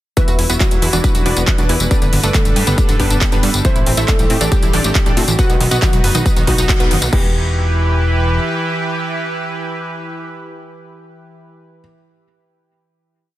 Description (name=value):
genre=uplifting trance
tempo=138 BPM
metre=4/4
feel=straight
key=E minor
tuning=A4 = 440 Hz
part: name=wide unison pluck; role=melody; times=0.2-11.8 s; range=B3 to F#5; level=-23 LUFS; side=right 1 dB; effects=sidechain pumping, dub echo
part: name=dark concert grand piano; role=second line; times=0.2-11.8 s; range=F#3 to C5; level=-25 LUFS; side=left 2 dB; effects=dub echo
part: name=supersaw pad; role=sustained chords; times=0.2-11.4 s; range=E3 to B4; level=-23 LUFS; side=right 1 dB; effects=sidechain pumping
part: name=analog pluck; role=arpeggios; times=0.2-7.3 s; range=D3 to B4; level=-24 LUFS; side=right 4 dB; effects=chorus, sidechain pumping, dub echo
part: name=big-room dance drum kit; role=drums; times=0.2-7.2 s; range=crash cymbal, handclaps, hi-hat, tambourine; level=-21 LUFS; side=left 1 dB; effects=none
part: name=electronic kick drum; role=drums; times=0.2-7.2 s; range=none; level=-15 LUFS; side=equal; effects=none
part: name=plucky analog bass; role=bass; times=0.3-8.4 s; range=E1 to A2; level=-18 LUFS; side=equal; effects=sidechain pumping
room=little or no reverb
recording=dense, heavily limited modern master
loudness=-13 LUFS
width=side -15 dB against mid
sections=0.2-7.1 drop; 7.1-10.6 final chord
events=drop 0.2-7.1; band accent 6.7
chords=0.2 Esus2; 1.9 Gadd9; 3.6 Am7; 5.4 B; 7.1 Em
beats=| 0.17 0.61 1.04 1.48 | 1.91 2.35 2.78 3.21 | 3.65 4.08 4.52 4.95 | 5.39 5.82 6.26 6.69 | 7.13 7.56 8.00 8.43 | 8.87 9.30 9.74 10.17